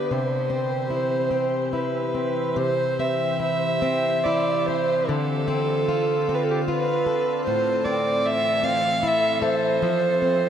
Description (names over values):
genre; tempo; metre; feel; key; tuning
celtic folk, Celtic slow air; 74 BPM; 3/4; uneven beats, rubato; unclear; A4 = 439 Hz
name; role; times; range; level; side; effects
dark fiddle; melody; 0.0-10.5 s; G4 to F5; -22 LUFS; right 2 dB; diffuse ambient delay
fingerpicked plugged-in swing-style acoustic guitar; accompaniment; 0.0-10.5 s; A2 to C5; -26 LUFS; left 4 dB; none
icy glass pad; sustained chords; 0.0-10.5 s; D3 to A4; -30 LUFS; equal; chorus, built-in reverb
room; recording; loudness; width
wet huge ambient reverb, RT60 5.6 s; dreamy mix soaked in reverb; -20 LUFS; side -9 dB against mid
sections
0.0-2.6 A section; 2.6-10.5 B section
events
none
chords
0.1 C; 5.1 Dm7; 7.4 Am; 9.8 F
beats
| 0.12 0.91 1.74 | 2.57 3.40 4.23 | 5.06 5.87 6.66 | 7.45 8.24 9.02 | 9.80